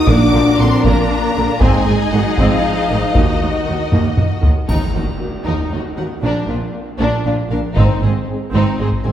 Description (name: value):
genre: cinematic, epic orchestral film score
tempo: 78 BPM (dotted quarters)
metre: 6/8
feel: straight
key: Eb dorian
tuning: A4 = 440 Hz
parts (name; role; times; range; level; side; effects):
- warm symphonic violin section; melody; 0.0-9.1 s; Bb4 to D6; -24 LUFS; left 4 dB; none
- rich symphonic violin section; second line; 0.0-9.1 s; D4 to Eb5; -24 LUFS; left 3 dB; none
- warm symphonic viola section; accompaniment; 0.0-9.1 s; D3 to Eb4; -21 LUFS; right 1 dB; none
- dark French horn section; sustained chords; 0.0-9.1 s; Eb3 to Gb4; -21 LUFS; left 2 dB; none
- clear symphonic double bass section; bass; 0.1-9.1 s; Ab1 to Eb2; -20 LUFS; right 2 dB; none
- warm symphonic cello section; bass; 0.1-9.1 s; Eb2 to Bb2; -21 LUFS; right 2 dB; none
- solo taiko drums; drums; 0.1-9.1 s; none; -18 LUFS; equal; none
- triangle; percussion; 4.7-5.7 s; none; -40 LUFS; right 1 dB; none
- impact; sound effects; 4.7-6.2 s; none; -27 LUFS; equal; none
room: wet scoring stage reverb, RT60 1.8 s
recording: heard from further back in the room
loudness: -13 LUFS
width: side -10 dB against mid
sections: 0.0-4.7 A section; 4.7-9.1 B section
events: drum fill 3.9-4.7; impact 4.7-6.2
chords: 0.1 Bb; 1.6 Ab; 3.2 Ebm; 6.2 Bb; 7.8 Ab